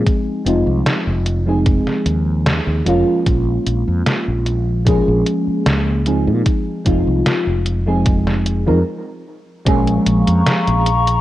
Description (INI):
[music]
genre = vaporwave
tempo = 75 BPM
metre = 4/4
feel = straight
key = Bb minor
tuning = A4 = 440 Hz
[part]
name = mellow FM electric piano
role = accompaniment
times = 0.0-10.9 s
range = F3 to Bb4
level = -18 LUFS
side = equal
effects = phaser, lush chorus, analog delay
[part]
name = detuned 8-bit digital drum machine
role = drums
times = 0.1-11.2 s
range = hi-hat, snare drum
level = -20 LUFS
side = equal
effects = overdrive, gated reverb
[part]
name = electronic kick drum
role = drums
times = 0.1-9.8 s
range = none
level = -17 LUFS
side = equal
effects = overdrive
[part]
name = mellow fretless electric bass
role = bass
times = 0.5-11.2 s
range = F1 to Bb2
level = -18 LUFS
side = equal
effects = tube saturation
[part]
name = warbly tape-like pad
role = sustained chords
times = 10.1-11.2 s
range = Ab4 to Db6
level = -19 LUFS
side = left 2 dB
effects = chorus, built-in reverb, vintage 12-bit sampler grit
[sound]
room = light reverb, digital ambience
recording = cassette tape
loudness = -14 LUFS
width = side -14 dB against mid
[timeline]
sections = 0.0-9.7 A section; 9.7-11.2 B section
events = stop 8.9-9.7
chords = 0.1 Fm7; 3.3 Bbm7; 6.5 Fm7; 9.7 Bbm7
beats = | 0.07 0.87 1.67 2.47 | 3.27 4.07 4.87 5.67 | 6.47 7.27 8.07 8.87 | 9.67 10.47